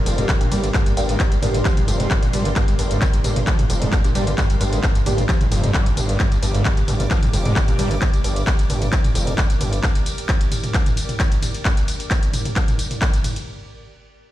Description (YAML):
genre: driving peak-time techno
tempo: 132 BPM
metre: 4/4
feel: straight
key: G phrygian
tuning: A4 = 440 Hz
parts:
  - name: granular cloud pad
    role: texture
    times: 0.0-11.7 s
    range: G4 to D6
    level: -30 LUFS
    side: equal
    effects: built-in reverb, sidechain pumping
  - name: screaming distorted acid line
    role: riff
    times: 0.1-7.9 s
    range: G1 to G3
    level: -25 LUFS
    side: equal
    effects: distortion, analog chorus, sidechain pumping, ping-pong delay
  - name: gritty driven synth bass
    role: bass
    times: 0.1-9.8 s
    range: F1 to G1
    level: -22 LUFS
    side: equal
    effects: distortion, sidechain pumping
  - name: techno drum kit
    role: drums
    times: 0.1-13.4 s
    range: handclaps, hi-hat, ride cymbal, tambourine, toms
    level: -24 LUFS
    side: equal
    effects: none
  - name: electronic kick drum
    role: drums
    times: 0.3-13.1 s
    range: none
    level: -19 LUFS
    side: equal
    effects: none
  - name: filtered dub chord stab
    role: stabs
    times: 0.4-7.9 s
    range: Bb3 to G4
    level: -30 LUFS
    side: right 1 dB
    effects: phaser, wide subtle chorus, sidechain pumping, ping-pong delay
room: digital ambience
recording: played on a big sound system in a bare room, large studio reverb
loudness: -17 LUFS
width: side -14 dB against mid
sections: 0.0-13.5 A section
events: drop 0.0-13.5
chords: 0.0 Gm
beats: 0.29 | 0.74 1.20 1.65 2.11 | 2.56 3.02 3.47 3.92 | 4.38 4.83 5.29 5.74 | 6.20 6.65 7.11 7.56 | 8.02 8.47 8.93 9.38 | 9.84 10.29 10.74 11.20 | 11.65 12.11 12.56 13.02